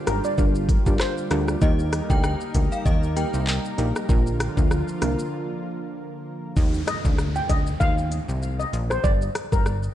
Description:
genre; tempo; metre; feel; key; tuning
dancehall; 97 BPM; 4/4; swing 56% on 16ths; Eb major; A4 = 440 Hz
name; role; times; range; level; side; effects
lush unison pad; sustained chords; 0.0-6.5 s; D3 to Bb4; -31 LUFS; right 2 dB; chorus, sidechain pumping
steel pan; melody; 0.1-1.5, 6.9-9.6 s; Bb4 to G5; -28 LUFS; left 2 dB; tape echo
soft round pluck; accompaniment; 0.1-5.2 s; Bb3 to Bb4; -29 LUFS; equal; chorus, sidechain pumping
plucky analog bass; bass; 0.1-9.9 s; G1 to Eb2; -26 LUFS; equal; none
island pop drum kit; drums; 0.1-9.9 s; handclaps, hi-hat, kick drum, rim click, shaker; -23 LUFS; equal; vintage 12-bit sampler grit
synth chime; second line; 1.6-4.4 s; Eb5 to G5; -32 LUFS; left 2 dB; ensemble chorus, tape echo
downlifter; sound effects; 6.6-9.9 s; none; -35 LUFS; right 1 dB; none
room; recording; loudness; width
light reverb; dark, warm production; -20 LUFS; side -12 dB against mid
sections
0.0-6.6 A section; 6.6-9.9 B section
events
break 5.3-6.6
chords
0.0 Gm7; 1.6 Eb; 4.1 Bb; 6.6 Eb5; 9.0 G5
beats
0.38 1.00 | 1.62 2.24 2.85 3.47 | 4.09 4.71 5.33 5.95 | 6.57 7.18 7.80 8.42 | 9.04 9.66

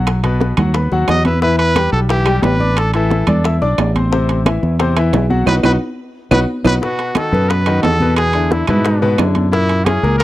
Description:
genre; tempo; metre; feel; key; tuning
latin, salsa; 178 BPM; 4/4; straight; unclear; A4 = 440 Hz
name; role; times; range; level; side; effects
bright concert grand piano; accompaniment; 0.0-10.2 s; A#2 to E6; -19 LUFS; left 3 dB; none
fingered electric bass; bass; 0.0-10.2 s; A1 to G#2; -16 LUFS; equal; none
bongos; percussion; 0.1-10.2 s; none; -24 LUFS; left 5 dB; none
claves; percussion; 0.1-10.0 s; none; -28 LUFS; right 7 dB; none
congas; percussion; 0.1-10.2 s; none; -21 LUFS; equal; none
timbales; percussion; 0.1-10.2 s; none; -22 LUFS; right 6 dB; none
clear trumpet; melody; 1.1-10.2 s; E4 to D#5; -18 LUFS; right 1 dB; none
room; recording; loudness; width
small room ambience; dry, close 1970s-style studio recording; -12 LUFS; side -15 dB against mid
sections
0.0-6.8 A section; 6.8-10.2 B section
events
drum fill 5.5-6.8; band accent 5.5-6.8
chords
0.1 B; 1.4 Em; 2.8 Asus4; 4.1 Am; 5.5 B; 6.8 B7; 8.2 E7; 9.5 F#7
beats
| 0.07 0.41 0.74 1.08 | 1.42 1.76 2.10 2.43 | 2.77 3.11 3.45 3.78 | 4.12 4.46 4.80 5.13 | 5.47 5.81 6.15 6.49 | 6.82 7.16 7.50 7.83 | 8.17 8.51 8.85 9.19 | 9.52 9.86 10.20

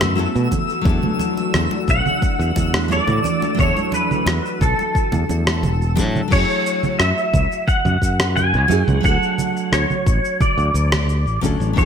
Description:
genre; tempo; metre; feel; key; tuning
sunset chillout; 88 BPM; 4/4; straight; F# minor; A4 = 438 Hz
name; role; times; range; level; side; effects
pedal steel guitar; melody; 0.0-11.9 s; A4 to G#5; -21 LUFS; equal; ensemble chorus, ping-pong delay
nylon-string guitar; accompaniment; 0.0-11.9 s; F#3 to A4; -25 LUFS; moving between left 10 dB and right 9 dB; auto-pan, ping-pong delay
soft string machine; sustained chords; 0.0-6.3 s; E3 to F#4; -26 LUFS; equal; phaser, ensemble chorus
modern bright fingered electric bass; bass; 0.0-11.9 s; E1 to B2; -19 LUFS; equal; none
dusty soul sampler-style drum kit; drums; 0.0-11.9 s; congas, crash cymbal, rim click, shaker; -24 LUFS; right 3 dB; gated reverb
congas; percussion; 0.0-6.1 s; none; -29 LUFS; right 2 dB; none
twinkling granular texture; texture; 0.0-6.3 s; E6; -31 LUFS; left 2 dB; built-in reverb, wide subtle chorus
electronic kick drum; drums; 0.5-11.9 s; none; -20 LUFS; equal; overdrive
room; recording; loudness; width
light reverb; bright 1980s-style digital production; -16 LUFS; side -7 dB against mid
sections
0.0-6.3 A section; 6.3-11.9 B section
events
none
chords
0.0 F#m7; 0.9 E9sus4; 6.3 F#m9; 9.0 Dmaj7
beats
0.18 | 0.86 1.54 2.22 2.91 | 3.59 4.27 4.95 5.63 | 6.32 7.00 7.68 8.36 | 9.04 9.72 10.41 11.09 | 11.77

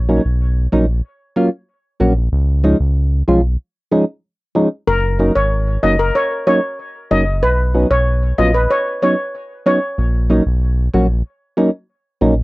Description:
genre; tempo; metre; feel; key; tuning
dancehall; 94 BPM; 4/4; straight; F# major; A4 = 441 Hz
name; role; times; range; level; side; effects
round analog bass; bass; 0.0-12.4 s; F#1 to C#2; -16 LUFS; equal; none
percussive organ stab; accompaniment; 0.1-12.3 s; E#3 to F#4; -14 LUFS; right 1 dB; chorus
steel pan; melody; 4.9-9.8 s; A#4 to D#5; -17 LUFS; left 1 dB; tape echo
room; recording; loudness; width
light reverb; worn, warbling old tape, cassette tape, warbly pitch drift; -14 LUFS; side -20 dB against mid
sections
0.0-12.4 A section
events
none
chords
0.0 F#6/A#; 2.3 C#add9; 4.9 F#6; 7.4 Badd9; 10.0 F#6/A#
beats
0.41 1.05 1.69 | 2.32 2.96 3.60 4.24 | 4.88 5.51 6.15 6.79 | 7.43 8.07 8.71 9.34 | 9.98 10.62 11.26 11.90

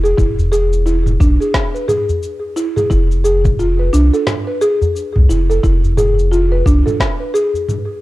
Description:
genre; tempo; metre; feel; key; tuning
organic downtempo; 88 BPM; 4/4; swing 60% on 16ths; unclear; A4 = 440 Hz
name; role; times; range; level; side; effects
buzzing marimba with soft mallets; arpeggios; 0.0-7.5 s; D4 to B4; -17 LUFS; equal; analog delay
warm sub bass; bass; 0.0-6.8 s; E1 to C2; -14 LUFS; equal; none
afro-pop drum kit; drums; 0.1-7.9 s; cabasa, snare drum, toms; -21 LUFS; equal; none
electronic kick drum; drums; 0.2-7.2 s; none; -16 LUFS; equal; none
udu; percussion; 0.4-7.7 s; none; -19 LUFS; equal; none
room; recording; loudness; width
digital ambience; dry, gritty hardware recording, cassette tape; -12 LUFS; side -17 dB against mid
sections
0.0-8.0 A section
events
none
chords
0.0 E; 2.9 F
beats
| 0.18 0.86 1.55 2.23 | 2.91 3.59 4.27 4.96 | 5.64 6.32 7.00 7.68

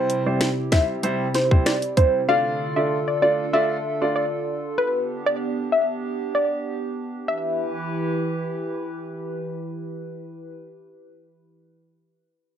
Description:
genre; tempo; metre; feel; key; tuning
dancehall; 96 BPM; 4/4; straight; E phrygian; A4 = 438 Hz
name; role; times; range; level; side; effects
warm concert grand piano; accompaniment; 0.0-4.2 s; G3 to D5; -25 LUFS; right 2 dB; sidechain pumping, plate reverb
hollow soft pad; sustained chords; 0.0-10.5 s; C3 to B4; -28 LUFS; right 1 dB; chorus, sidechain pumping
island pop drum kit; drums; 0.1-2.1 s; finger snaps, hi-hat, kick drum, snare drum; -19 LUFS; equal; none
soft round pluck; melody; 0.3-9.1 s; B4 to F5; -23 LUFS; left 1 dB; chorus, slapback echo, plate reverb
room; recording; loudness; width
moderate studio reverb, RT60 0.5 s; none; -21 LUFS; side -9 dB against mid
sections
0.0-7.3 A section; 7.3-9.8 B section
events
none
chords
0.0 C; 2.3 Dm; 4.8 G; 7.3 Em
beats
0.41 1.04 1.66 | 2.29 2.91 3.54 4.16 | 4.79 5.41 6.04 6.66 | 7.29 7.91 8.54 9.16

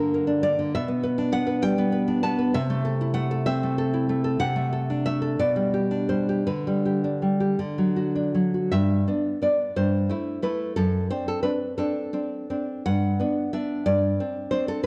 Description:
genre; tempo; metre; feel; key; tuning
romantic piece for solo classical guitar; 52-68 BPM (dotted quarters); 6/8; rubato; G major; A4 = 440 Hz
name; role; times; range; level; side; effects
nylon-string guitar; solo; 0.0-14.9 s; F#2 to A5; -25 LUFS; equal; none
room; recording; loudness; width
moderate scoring stage reverb, RT60 1.4 s; worn, warbling old tape, cassette tape, warbly pitch drift; -25 LUFS; mono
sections
0.0-8.7 A section; 8.7-14.9 B section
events
none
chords
0.0 Gm; 0.7 G/B; 2.5 Am/C; 4.4 D7/C; 5.4 G/B; 6.5 G/D; 7.6 D; 8.7 G; 9.8 Am7/G; 10.8 D7/F#; 12.9 G; 13.9 Gsus24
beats
| 0.74 1.63 | 2.54 3.47 | 4.40 5.39 | 6.47 7.59 | 8.72 9.76 | 10.77 11.77 | 12.86 13.86 | 14.85

